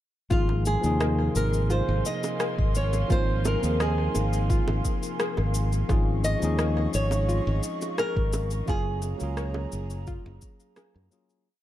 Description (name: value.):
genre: sunset chillout.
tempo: 86 BPM.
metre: 4/4.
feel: straight.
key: Ab mixolydian.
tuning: A4 = 440 Hz.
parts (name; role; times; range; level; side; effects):
flamenco guitar; melody; 0.3-10.7 s; F4 to Eb5; -31 LUFS; right 1 dB; digital delay.
tine electric piano; accompaniment; 0.3-11.5 s; C3 to Ab4; -32 LUFS; moving between left 5 dB and right 5 dB; auto-pan, digital delay.
airy breathy pad; sustained chords; 0.3-11.4 s; Ab4 to Db6; -36 LUFS; left 2 dB; chorus.
soft round pluck; arpeggios; 0.3-11.1 s; F4 to Eb5; -37 LUFS; left 2 dB; chorus, vintage 12-bit sampler grit, digital delay.
modern bright fingered electric bass; bass; 0.3-11.1 s; Gb1 to Gb2; -26 LUFS; equal; none.
electronic cabasa and rim click; drums; 0.3-11.4 s; none; -34 LUFS; equal; overdrive.
electronic kick drum; drums; 0.3-10.6 s; none; -26 LUFS; equal; overdrive.
bongos; percussion; 0.5-10.9 s; none; -35 LUFS; right 3 dB; none.
room: light reverb.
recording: dark, warm production.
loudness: -23 LUFS.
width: side -13 dB against mid.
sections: 0.3-11.5 groove.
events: fade-out 7.8-11.5.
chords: 0.3 Ab69; 5.9 Dbmaj9/Ab; 8.7 Gbmaj9.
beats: | 0.31 1.00 1.70 2.40 | 3.10 3.80 4.49 5.19 | 5.89 6.59 7.29 7.98 | 8.68 9.38 10.07 10.77.